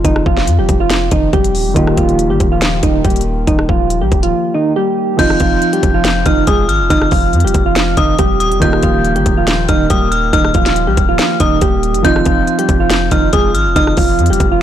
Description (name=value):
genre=hip hop, trap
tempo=140 BPM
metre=4/4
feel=half-time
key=unclear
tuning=A4 = 436 Hz
part: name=soft electric-piano-like synth keys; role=melody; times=0.0-14.6 s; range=Eb3 to Ab4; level=-16 LUFS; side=right 2 dB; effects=chorus, tremolo, low-pass filter
part: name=dark grand piano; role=accompaniment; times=0.0-14.6 s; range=Eb3 to G4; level=-19 LUFS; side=right 2 dB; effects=low-pass filter
part: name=warm 808-style bass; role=bass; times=0.0-14.6 s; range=Eb1 to F2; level=-17 LUFS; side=equal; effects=none
part: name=trap drum kit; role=drums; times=0.0-14.5 s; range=crash cymbal, hi-hat, kick drum, rim click, snare drum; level=-16 LUFS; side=equal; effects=none
part: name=metallic FM bell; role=second line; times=5.2-14.6 s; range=Eb6 to G6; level=-18 LUFS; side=left 5 dB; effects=chorus, ping-pong delay
room=digital ambience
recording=blown-out, overdriven recording, overdrive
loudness=-10 LUFS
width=side -10 dB against mid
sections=0.0-5.2 A section; 5.2-14.6 B section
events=none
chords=0.0 F7(no3); 1.8 Ebadd9; 5.2 Fm7; 8.6 Ebadd9; 12.0 Fm7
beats=| 0.04 0.47 0.90 1.33 | 1.76 2.19 2.62 3.04 | 3.47 3.90 4.33 4.76 | 5.19 5.62 6.04 6.47 | 6.90 7.33 7.76 8.19 | 8.62 9.04 9.47 9.90 | 10.33 10.76 11.19 11.62 | 12.04 12.47 12.90 13.33 | 13.76 14.19 14.62